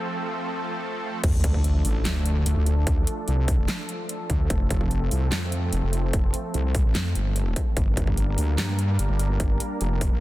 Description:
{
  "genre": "heavy wobble dubstep",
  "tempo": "147 BPM",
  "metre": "4/4",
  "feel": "half-time",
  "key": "D minor",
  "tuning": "A4 = 441 Hz",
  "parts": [
    { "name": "supersaw pad", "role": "sustained chords", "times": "0.0-10.2 s", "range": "F3 to Bb4", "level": "-31 LUFS", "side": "equal", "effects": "sidechain pumping, low-pass filter" },
    { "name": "wobble bass", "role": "bass", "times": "1.2-10.2 s", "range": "F1 to G2", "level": "-23 LUFS", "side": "equal", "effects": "chorus, overdrive" },
    { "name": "dubstep drum kit", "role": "drums", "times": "1.2-10.1 s", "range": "crash cymbal, handclaps, hi-hat, snare drum", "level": "-31 LUFS", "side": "equal", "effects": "none" },
    { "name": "electronic kick drum", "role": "drums", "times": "1.2-10.1 s", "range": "none", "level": "-24 LUFS", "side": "equal", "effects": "distortion" },
    { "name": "sub drop", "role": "sound effects", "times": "1.2-2.9 s", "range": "none", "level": "-31 LUFS", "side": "equal", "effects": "none" }
  ],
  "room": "little or no reverb",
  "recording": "dense, heavily limited modern master",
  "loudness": "-22 LUFS",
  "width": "side -16 dB against mid",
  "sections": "0.0-1.2 A section; 1.2-10.2 B section",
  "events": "break 0.0-1.2; build-up 0.0-1.2; drop 1.2-10.2; impact 1.2-2.9",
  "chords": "0.0 F; 1.2 Dm; 4.5 F; 7.8 Gm"
}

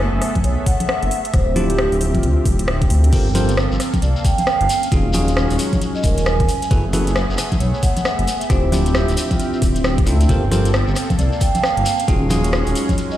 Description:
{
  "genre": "UK garage, two-step garage",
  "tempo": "134 BPM",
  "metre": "4/4",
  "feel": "swing 62% on 16ths",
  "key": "unclear",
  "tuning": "A4 = 440 Hz",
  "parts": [
    { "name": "warm analog pad", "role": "sustained chords", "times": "0.0-13.2 s", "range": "F3 to F5", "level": "-31 LUFS", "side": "equal", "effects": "chorus, sidechain pumping" },
    { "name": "dark detuned saw bass", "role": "bass", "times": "0.0-12.7 s", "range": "D1 to D2", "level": "-18 LUFS", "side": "equal", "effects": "tube saturation" },
    { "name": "warbly tape-like pad", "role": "texture", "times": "0.0-13.2 s", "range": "F3 to A5", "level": "-26 LUFS", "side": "right 2 dB", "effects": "chorus, built-in reverb, sidechain pumping" },
    { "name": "garage drum kit", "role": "drums", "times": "0.2-13.1 s", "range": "congas, crash cymbal, hi-hat, rim click", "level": "-23 LUFS", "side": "equal", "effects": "studio reverb" },
    { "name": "vibraphone with medium mallets", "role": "melody", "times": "0.4-13.2 s", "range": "F4 to G5", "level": "-23 LUFS", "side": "right 2 dB", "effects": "ping-pong delay" },
    { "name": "electronic kick drum", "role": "drums", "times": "0.4-13.0 s", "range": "none", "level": "-18 LUFS", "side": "equal", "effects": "studio reverb" },
    { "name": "bell-like tine electric piano", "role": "stabs", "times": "1.6-13.2 s", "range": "C4 to C5", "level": "-24 LUFS", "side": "left 1 dB", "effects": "ping-pong delay" },
    { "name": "shekere", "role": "percussion", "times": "3.1-13.2 s", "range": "none", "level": "-31 LUFS", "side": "left 3 dB", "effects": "none" }
  ],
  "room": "light reverb, digital ambience",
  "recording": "played on a big sound system in a bare room, stone room reverb",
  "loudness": "-15 LUFS",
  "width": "side -13 dB against mid",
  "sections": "0.0-13.2 A section",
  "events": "none",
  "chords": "0.0 F#m11; 1.3 Dm11; 3.1 Gm11; 4.7 Ebm11; 6.5 F#m11; 8.5 Dm11; 10.3 Gm11; 11.9 Ebm11"
}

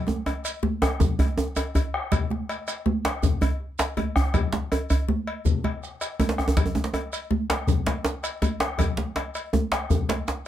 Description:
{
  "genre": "west african traditional, West African drum ensemble",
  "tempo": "108 BPM (dotted quarters)",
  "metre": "12/8",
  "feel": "straight",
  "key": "none",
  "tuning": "none",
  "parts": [
    { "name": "bombo", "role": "percussion", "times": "0.1-10.4 s", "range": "none", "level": "-28 LUFS", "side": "left 2 dB", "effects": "none" },
    { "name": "congas", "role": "percussion", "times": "0.1-10.3 s", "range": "none", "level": "-29 LUFS", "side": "right 5 dB", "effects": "none" },
    { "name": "djembe", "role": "percussion", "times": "0.1-10.3 s", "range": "none", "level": "-30 LUFS", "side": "left 5 dB", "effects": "none" },
    { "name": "djembe", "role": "percussion", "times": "0.1-10.4 s", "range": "none", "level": "-25 LUFS", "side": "right 1 dB", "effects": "none" },
    { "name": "cowbell", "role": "percussion", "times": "0.3-10.3 s", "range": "none", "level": "-32 LUFS", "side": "left 2 dB", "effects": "none" },
    { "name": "shekere", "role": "percussion", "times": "0.5-10.4 s", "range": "none", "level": "-33 LUFS", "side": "right 5 dB", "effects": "none" }
  ],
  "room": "light reverb",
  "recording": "close, detailed microphones",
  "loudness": "-23 LUFS",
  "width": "side -11 dB against mid",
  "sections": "0.0-10.5 A section",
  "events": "none",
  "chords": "none"
}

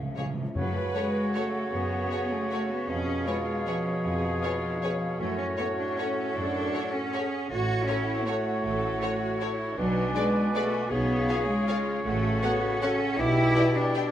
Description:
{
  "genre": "classical, orchestral ballroom waltz",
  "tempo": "157 BPM",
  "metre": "3/4",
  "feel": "uneven beats, rubato",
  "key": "F# minor",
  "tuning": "A4 = 440 Hz",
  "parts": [
    { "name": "mellow hollow flute section", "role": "second line", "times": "0.0-14.0 s", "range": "E#5 to G#5", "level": "-37 LUFS", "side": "left 1 dB", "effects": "none" },
    { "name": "clear symphonic cello section", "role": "bass", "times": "0.0-14.1 s", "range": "C#3 to F#4", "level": "-30 LUFS", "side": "right 1 dB", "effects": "none" },
    { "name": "timpani", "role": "percussion", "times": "0.0-1.1 s", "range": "F#2 to C#3", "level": "-33 LUFS", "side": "equal", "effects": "none" },
    { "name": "clear symphonic violin section", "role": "melody", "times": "0.2-14.0 s", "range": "C#5 to G5", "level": "-38 LUFS", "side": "left 4 dB", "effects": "none" },
    { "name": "rich studio violin section", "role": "second line", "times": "0.2-14.0 s", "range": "F#4 to D5", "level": "-39 LUFS", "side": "left 2 dB", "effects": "none" },
    { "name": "rich symphonic viola section", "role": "accompaniment", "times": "0.2-14.1 s", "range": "G#3 to B4", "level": "-36 LUFS", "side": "left 1 dB", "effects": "none" },
    { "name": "clear oboe", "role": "second line", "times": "0.6-14.1 s", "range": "C#5 to D5", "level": "-37 LUFS", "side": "right 1 dB", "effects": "none" },
    { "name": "warm clarinet", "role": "second line", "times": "0.6-14.1 s", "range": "F#4 to B4", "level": "-36 LUFS", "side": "left 2 dB", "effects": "none" },
    { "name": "warm bassoon", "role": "accompaniment", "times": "0.6-14.1 s", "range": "A2 to C#3", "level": "-34 LUFS", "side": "right 1 dB", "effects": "none" },
    { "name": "clear symphonic double bass section", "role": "bass", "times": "0.6-13.5 s", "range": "A1 to F#2", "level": "-33 LUFS", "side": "right 1 dB", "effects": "none" },
    { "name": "warm French horn section", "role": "sustained chords", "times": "0.9-14.1 s", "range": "E#4 to D5", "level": "-38 LUFS", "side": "left 5 dB", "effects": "none" }
  ],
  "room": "moderate recital hall reverb, RT60 1.3 s",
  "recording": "none",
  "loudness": "-25 LUFS",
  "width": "side -11 dB against mid",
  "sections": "0.6-14.1 A section",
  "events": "timpani fill 0.0-0.6",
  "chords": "0.0 C#; 0.6 F#m; 2.9 C#7/E#; 5.2 F#m; 7.5 F#m/A; 9.8 G#dim/B; 10.9 C#7/B; 12.1 F#m/A; 13.2 G/B"
}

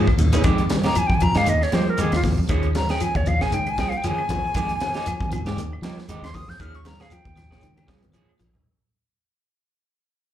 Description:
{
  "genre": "afrobeat",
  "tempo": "117 BPM",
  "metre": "4/4",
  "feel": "swing 55% on 16ths",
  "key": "F minor",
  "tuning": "A4 = 440 Hz",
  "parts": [
    { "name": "electric guitar at the edge of break-up", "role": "arpeggios", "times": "0.0-8.6 s", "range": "Eb3 to G3", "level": "-30 LUFS", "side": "left 5 dB", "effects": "wide subtle chorus, slapback echo" },
    { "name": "electric guitar through a small old amp", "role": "stabs", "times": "0.0-8.6 s", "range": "F3 to Ab4", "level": "-29 LUFS", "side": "right 5 dB", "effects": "slapback echo" },
    { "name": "fingered electric bass", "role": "bass", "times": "0.0-8.5 s", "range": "Bb1 to F3", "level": "-24 LUFS", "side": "equal", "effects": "none" },
    { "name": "tight funk drum kit", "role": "drums", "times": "0.1-8.5 s", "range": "hi-hat, kick drum, ride cymbal, snare drum", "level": "-26 LUFS", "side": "equal", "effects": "none" },
    { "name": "claves", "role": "percussion", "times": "0.1-8.4 s", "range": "none", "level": "-40 LUFS", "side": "left 4 dB", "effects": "slapback echo" },
    { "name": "congas", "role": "percussion", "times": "0.2-8.7 s", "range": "none", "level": "-27 LUFS", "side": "equal", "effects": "slapback echo" },
    { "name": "shekere", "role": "percussion", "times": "0.2-8.5 s", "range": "none", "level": "-30 LUFS", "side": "equal", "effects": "none" },
    { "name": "jazz flute", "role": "melody", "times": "0.9-7.9 s", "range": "F4 to G6", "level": "-25 LUFS", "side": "left 1 dB", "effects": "slapback echo" }
  ],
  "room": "little or no reverb",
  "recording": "live gig heard through the venue's PA, club reverb",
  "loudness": "-19 LUFS",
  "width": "side -11 dB against mid",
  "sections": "0.5-8.7 A section",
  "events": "drum fill 0.0-0.5, 7.6-8.7; fade-out 0.5-8.7; flute solo 0.5-8.7",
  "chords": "0.5 Fm11; 2.5 Eb9sus4; 4.5 Fm11; 6.6 Eb9sus4"
}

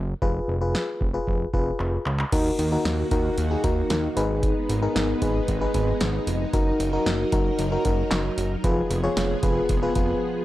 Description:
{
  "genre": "synth-pop",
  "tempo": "114 BPM",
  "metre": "4/4",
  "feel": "straight",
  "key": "Eb minor",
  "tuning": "A4 = 440 Hz",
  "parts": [
    { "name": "fat analog bass", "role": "bass", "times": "0.0-10.1 s", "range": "F1 to Eb2", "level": "-26 LUFS", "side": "equal", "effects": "none" },
    { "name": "FM electric piano with tremolo", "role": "accompaniment", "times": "0.2-10.4 s", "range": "Eb4 to Db5", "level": "-26 LUFS", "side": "left 2 dB", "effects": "none" },
    { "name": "electro analog drum machine", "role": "drums", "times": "0.2-10.1 s", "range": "crash cymbal, handclaps, hi-hat, kick drum, snare drum", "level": "-27 LUFS", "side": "equal", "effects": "none" },
    { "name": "string machine, full ensemble", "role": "sustained chords", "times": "2.3-10.4 s", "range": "Eb3 to Bb4", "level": "-29 LUFS", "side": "equal", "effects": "ensemble chorus" }
  ],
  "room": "little or no reverb",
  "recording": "dry, gritty hardware recording",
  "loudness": "-21 LUFS",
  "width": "side -15 dB against mid",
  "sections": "0.0-2.3 A section; 2.3-10.4 B section",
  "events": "drum fill 1.8-2.3; break 10.2",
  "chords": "0.2 Fdim; 2.3 Ebm; 4.2 Abm; 6.5 Ebm/Gb; 8.6 Fdim"
}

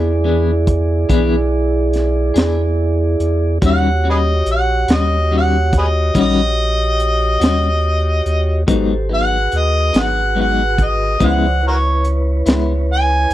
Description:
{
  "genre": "slow blues",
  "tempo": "48 BPM (dotted quarters)",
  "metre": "12/8",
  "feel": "straight",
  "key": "unclear",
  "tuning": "A4 = 439 Hz",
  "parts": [
    { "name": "clean electric guitar", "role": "accompaniment", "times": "0.0-12.7 s", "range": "G#2 to G#4", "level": "-19 LUFS", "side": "left 5 dB", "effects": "tremolo" },
    { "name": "mellow tonewheel organ", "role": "sustained chords", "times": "0.0-13.3 s", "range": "E#3 to D5", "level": "-22 LUFS", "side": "right 2 dB", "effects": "slow rotary speaker" },
    { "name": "pure sine sub bass", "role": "bass", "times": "0.0-13.3 s", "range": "G#1 to E2", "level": "-17 LUFS", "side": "equal", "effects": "none" },
    { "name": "crunchy breakbeat drum kit", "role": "drums", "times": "0.7-13.3 s", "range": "hi-hat, kick drum, snare drum", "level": "-17 LUFS", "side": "equal", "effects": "none" },
    { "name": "mellow harmonica", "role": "melody", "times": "3.7-13.3 s", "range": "F#4 to G#5", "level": "-18 LUFS", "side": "equal", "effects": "overdrive" }
  ],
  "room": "studio reverb",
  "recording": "dry, close 1970s-style studio recording",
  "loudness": "-13 LUFS",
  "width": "side -14 dB against mid",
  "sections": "0.0-13.3 A section",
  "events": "harmonica solo 0.0-13.3",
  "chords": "0.0 E7; 3.6 D#7#9; 8.7 G#m7; 11.2 C#m7"
}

